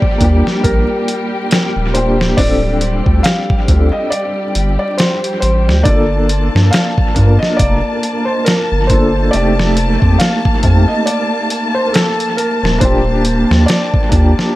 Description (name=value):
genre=trip hop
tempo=69 BPM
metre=4/4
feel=swing 58% on 16ths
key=G minor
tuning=A4 = 440 Hz
part: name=felt-muted upright piano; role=melody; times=0.0-14.6 s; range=A4 to F5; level=-19 LUFS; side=equal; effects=dub echo
part: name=dark upright piano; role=accompaniment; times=0.0-14.6 s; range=A3 to Bb4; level=-19 LUFS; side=equal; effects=tremolo, tape echo
part: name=dark studio string section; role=sustained chords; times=0.0-14.6 s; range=G3 to A5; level=-20 LUFS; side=equal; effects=vintage 12-bit sampler grit
part: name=dusty soul sampler-style drum kit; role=drums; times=0.0-14.6 s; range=hi-hat, kick drum, snare drum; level=-15 LUFS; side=equal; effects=dub echo
part: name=round analog bass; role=bass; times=0.2-14.3 s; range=D1 to G2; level=-13 LUFS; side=equal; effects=none
room=small room ambience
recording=echo-heavy mix, vinyl crackle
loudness=-11 LUFS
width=side -17 dB against mid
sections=0.0-14.6 A section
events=none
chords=0.0 Ebmaj7; 2.4 Dm7; 5.9 Gm7; 9.3 F7; 12.8 Ebmaj7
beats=0.64 1.51 | 2.38 3.25 4.12 4.99 | 5.86 6.73 7.59 8.46 | 9.33 10.20 11.07 11.94 | 12.81 13.68 14.55